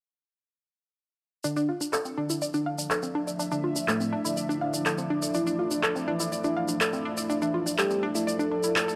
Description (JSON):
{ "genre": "melodic techno", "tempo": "123 BPM", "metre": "4/4", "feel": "straight", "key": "D minor", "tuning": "A4 = 444 Hz", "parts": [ { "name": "fat analog lead", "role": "melody", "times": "1.4-9.0 s", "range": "A3 to A4", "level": "-34 LUFS", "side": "equal", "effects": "subtle chorus, analog delay" }, { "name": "deep dark ambient pad", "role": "sustained chords", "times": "2.9-9.0 s", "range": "F3 to D5", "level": "-38 LUFS", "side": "equal", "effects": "chorus, built-in reverb" }, { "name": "analog pluck", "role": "arpeggios", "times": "1.4-8.9 s", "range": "C4 to F5", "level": "-32 LUFS", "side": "equal", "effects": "chorus, analog delay" }, { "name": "tube shaker", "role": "percussion", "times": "1.4-9.0 s", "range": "none", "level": "-37 LUFS", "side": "equal", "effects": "none" }, { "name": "airy breathy pad", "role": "texture", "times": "2.1-9.0 s", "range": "F3 to E5", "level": "-39 LUFS", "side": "equal", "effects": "chorus" }, { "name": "electronic handclaps", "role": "drums", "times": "1.9-8.9 s", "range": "none", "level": "-30 LUFS", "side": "equal", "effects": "low-pass filter on snare, low-pass filter on room" } ], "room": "moderate lush hall reverb, RT60 2.5 s", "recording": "dry, gritty hardware recording", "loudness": "-28 LUFS", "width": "mono", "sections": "1.4-9.0 A section", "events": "filter sweep on drum 1.4-9.0; filter sweep on synth arpeggio sound 1.4-9.0; filter sweep on analog synth lead 1.4-9.0", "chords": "1.4 Dmadd9" }